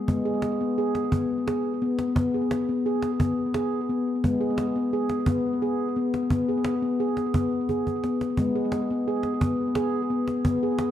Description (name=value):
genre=world meditative, meditative tuned percussion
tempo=58 BPM (dotted quarters)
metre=6/8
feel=straight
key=G# minor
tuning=A4 = 440 Hz
part: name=handpan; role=arpeggios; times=0.0-10.9 s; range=G#3 to G#4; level=-24 LUFS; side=left 1 dB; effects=tape echo
part: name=cajon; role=percussion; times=0.1-10.9 s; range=none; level=-29 LUFS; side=right 1 dB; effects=none
room=wet recital hall reverb, RT60 1.5 s, small room ambience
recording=dark, warm production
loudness=-23 LUFS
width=side -10 dB against mid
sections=0.1-10.9 A section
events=drum fill 7.7-8.4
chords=0.1 G#m; 2.2 G#m/B; 4.2 G#m; 6.3 G#m/B; 8.4 G#m